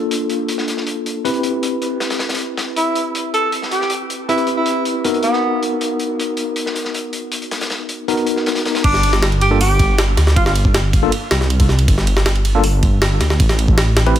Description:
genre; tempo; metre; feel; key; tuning
drum and bass, jungle; 158 BPM; 4/4; straight; unclear; A4 = 440 Hz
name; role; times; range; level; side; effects
tine electric piano; stabs; 0.0-14.1 s; Bb3 to B4; -21 LUFS; left 2 dB; medium stereo tremolo, dub echo
crunchy breakbeat drum kit; drums; 0.1-8.8 s; hi-hat, snare drum; -24 LUFS; left 2 dB; high-pass filter on hats, studio ambience, high-pass filter on snare, high-pass filter on room
mellow tenor saxophone; melody; 2.8-5.6, 8.8-10.5 s; B3 to A4; -20 LUFS; right 1 dB; dub echo
dark detuned saw bass; bass; 8.8-14.1 s; G1 to D2; -15 LUFS; equal; tube saturation
jungle sampler-style drum kit; drums; 8.8-14.2 s; crash cymbal, hi-hat, kick drum, ride cymbal, snare drum; -16 LUFS; equal; studio ambience
room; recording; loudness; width
light reverb, studio reverb; none; -15 LUFS; side -11 dB against mid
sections
0.0-8.8 A section; 8.8-14.2 B section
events
drop 8.8-14.2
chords
0.0 Gm7 (rootless); 1.2 Cmaj7; 5.0 Bmaj7; 8.8 G5; 13.4 N.C.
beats
0.11 0.49 0.87 | 1.25 1.63 2.01 2.39 | 2.77 3.15 3.53 3.91 | 4.29 4.67 5.05 5.42 | 5.80 6.18 6.57 6.94 | 7.32 7.70 8.08 8.46 | 8.84 9.22 9.60 9.98 | 10.36 10.74 11.12 11.50 | 11.88 12.26 12.64 13.02 | 13.40 13.78 14.16

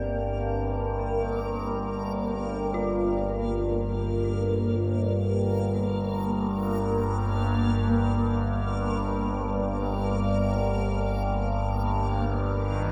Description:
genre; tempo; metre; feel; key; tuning
dark ambient drone; free time; none; none; G minor; A4 = 440 Hz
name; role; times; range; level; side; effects
dark detuned synth bell; arpeggios; 0.0-11.9 s; C4 to Bb4; -37 LUFS; equal; chorus, phaser, tape echo
overtone-sweeping drone; drone; 0.0-12.9 s; G1 to G2; -29 LUFS; equal; chorus, built-in reverb, phaser
backwards swelling texture; texture; 0.0-12.9 s; Bb3 to Bb4; -34 LUFS; equal; built-in reverb
warm studio cello section; sustained chords; 12.7-12.9 s; Eb3; -37 LUFS; equal; none
room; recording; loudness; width
wet huge ambient reverb, RT60 7.3 s; in a vast, echoing space; -27 LUFS; mono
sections
0.0-12.9 A section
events
none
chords
0.0 Gm; 11.9 Eb/G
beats
free time

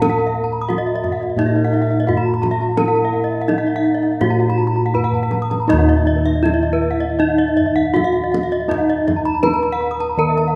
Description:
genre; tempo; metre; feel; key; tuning
Balinese gamelan; 80-90 BPM; 4/4; straight; Eb pelog; A4 = 440 Hz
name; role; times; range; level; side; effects
gamelan-type bronze metallophone; melody; 0.0-10.6 s; Eb4 to Cb5-40c; -21 LUFS; equal; none
gamelan-type bronze metallophone; arpeggios; 0.0-10.6 s; Cb5-40c to Cb6-40c; -26 LUFS; equal; none
gamelan-type bossed gongs; bass; 0.0-10.6 s; Eb2 to Bb4-45c; -23 LUFS; equal; none
kendang; percussion; 0.0-10.5 s; none; -29 LUFS; equal; none
gamelan-type bronze metallophone; arpeggios; 0.1-10.5 s; Cb5-40c to Eb6; -28 LUFS; equal; none
breathy mellow low xiao; second line; 1.4-5.0 s; Eb4 to Cb5-45c; -30 LUFS; equal; none
room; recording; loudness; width
moderate concert hall reverb, RT60 2.3 s; none; -18 LUFS; mono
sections
0.0-5.7 A section; 5.7-10.6 B section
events
drum fill 4.9-5.7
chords
none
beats
| 0.02 0.69 1.37 2.07 | 2.77 3.48 4.21 4.94 | 5.68 6.43 7.18 7.93 | 8.68 9.43 10.18

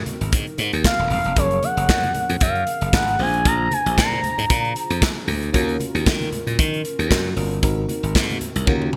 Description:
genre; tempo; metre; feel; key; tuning
early-eighties boogie funk; 115 BPM; 4/4; swing 56% on 16ths; Eb dorian; A4 = 439 Hz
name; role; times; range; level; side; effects
FM electric piano with soft pad layer; accompaniment; 0.0-9.0 s; F3 to C5; -31 LUFS; equal; chorus
glassy slap bass; bass; 0.0-8.9 s; Eb1 to Eb3; -25 LUFS; equal; none
modern studio drum kit; drums; 0.1-9.0 s; handclaps, hi-hat, kick drum, snare drum, toms; -24 LUFS; equal; gated reverb
congas; percussion; 0.1-9.0 s; none; -36 LUFS; equal; none
expressive portamento lead; melody; 0.9-5.0 s; Db5 to Bb5; -24 LUFS; equal; chorus, digital delay
room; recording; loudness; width
light reverb, studio reverb; bright 1980s-style digital production; -20 LUFS; mono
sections
0.0-9.0 A section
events
drum fill 8.7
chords
0.0 Ab7; 1.4 Gbmaj7; 3.2 Bb7; 5.5 Ebm7; 7.6 Ab7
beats
0.32 0.85 | 1.37 1.89 2.41 2.93 | 3.46 3.98 4.50 5.02 | 5.54 6.06 6.58 7.11 | 7.63 8.15 8.67

